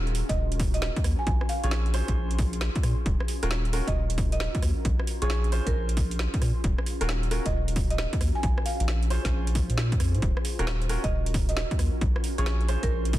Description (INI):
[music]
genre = UK garage, two-step garage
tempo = 134 BPM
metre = 4/4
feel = swing 65% on 16ths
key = Eb minor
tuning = A4 = 440 Hz
[part]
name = ethereal airy pad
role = sustained chords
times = 0.0-13.2 s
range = Db4 to C6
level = -38 LUFS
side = equal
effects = ensemble chorus, built-in reverb, sidechain pumping
[part]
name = saturated sub bass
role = bass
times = 0.0-13.2 s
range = Eb1 to Bb2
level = -26 LUFS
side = equal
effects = none
[part]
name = garage drum kit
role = drums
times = 0.1-13.2 s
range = hi-hat, rim click, snare drum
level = -35 LUFS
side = right 1 dB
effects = overdrive
[part]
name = buzzing marimba with medium mallets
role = melody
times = 0.3-13.2 s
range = Ab4 to Ab5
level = -35 LUFS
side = right 3 dB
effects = dub echo
[part]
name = electronic kick drum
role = drums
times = 0.3-13.2 s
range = none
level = -27 LUFS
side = equal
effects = overdrive
[part]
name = clear baby grand piano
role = stabs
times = 1.6-13.2 s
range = Db4 to Db5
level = -34 LUFS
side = right 1 dB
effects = dub echo
[sound]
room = little or no reverb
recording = dense, heavily limited modern master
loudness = -24 LUFS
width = side -15 dB against mid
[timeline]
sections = 0.0-13.2 A section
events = none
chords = 0.0 Ebm9; 1.3 Bbm9; 3.1 Ebm9; 4.8 Bbm9; 6.6 Ebm9; 8.4 Bbm9; 10.2 Ebm9; 12.0 Bbm9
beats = 0.37 0.82 | 1.27 1.72 2.16 2.61 | 3.06 3.51 3.95 4.40 | 4.85 5.30 5.75 6.19 | 6.64 7.09 7.54 7.98 | 8.43 8.88 9.33 9.78 | 10.22 10.67 11.12 11.57 | 12.01 12.46 12.91